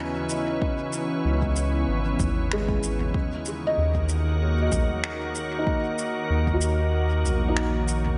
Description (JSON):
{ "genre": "ambient dub", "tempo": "95 BPM", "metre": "4/4", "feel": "swing 55% on 16ths", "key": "unclear", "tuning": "A4 = 441 Hz", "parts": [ { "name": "soft additive organ-like pad", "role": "sustained chords", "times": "0.0-8.2 s", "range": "C#3 to C#5", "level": "-31 LUFS", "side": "equal", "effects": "ensemble chorus, built-in reverb, vintage 12-bit sampler grit" }, { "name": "felt-muted upright piano", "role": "arpeggios", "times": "0.0-8.2 s", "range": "G#3 to G#5", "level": "-33 LUFS", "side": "equal", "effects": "tape echo" }, { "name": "soft-mallet drum kit", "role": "drums", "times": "0.3-8.2 s", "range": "finger snaps, shaker, toms", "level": "-34 LUFS", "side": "equal", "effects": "none" }, { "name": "electronic kick drum", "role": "drums", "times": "0.6-6.6 s", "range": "none", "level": "-30 LUFS", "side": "equal", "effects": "none" }, { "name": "soft dub sub bass", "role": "bass", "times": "1.2-8.2 s", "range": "G#1 to D#2", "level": "-27 LUFS", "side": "equal", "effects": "none" } ], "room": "light reverb, small room ambience", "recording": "nothing above 10.9 kHz", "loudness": "-25 LUFS", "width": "mono", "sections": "0.0-8.2 A section", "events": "kick drops out 6.9-8.2", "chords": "0.0 C#m7; 3.1 D#m7" }